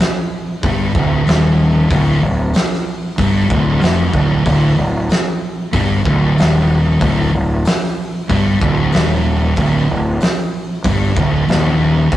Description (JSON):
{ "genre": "stoner and doom metal", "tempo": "94 BPM", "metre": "4/4", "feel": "straight", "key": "unclear", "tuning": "A4 = 442 Hz", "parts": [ { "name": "oversized low-tuned drum kit", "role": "drums", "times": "0.0-12.2 s", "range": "hi-hat, kick drum, snare drum", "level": "-18 LUFS", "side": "equal", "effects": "vintage 12-bit sampler grit" }, { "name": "thick fuzz guitar", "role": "riff", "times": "0.6-12.2 s", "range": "D2 to G2", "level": "-16 LUFS", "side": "left 1 dB", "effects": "distortion" }, { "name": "thick fuzz guitar", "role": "riff", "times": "0.6-12.2 s", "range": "D2 to G2", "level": "-21 LUFS", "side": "right 2 dB", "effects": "distortion" }, { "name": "fuzz fingered electric bass", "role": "bass", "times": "0.6-12.2 s", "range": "D1 to G1", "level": "-18 LUFS", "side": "equal", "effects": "overdrive, tube saturation" } ], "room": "moderate stone room reverb, RT60 1.1 s", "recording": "rough rehearsal-room recording, warm saturation, cassette tape", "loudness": "-13 LUFS", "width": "side -13 dB against mid", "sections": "0.0-12.2 A section", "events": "none", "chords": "none" }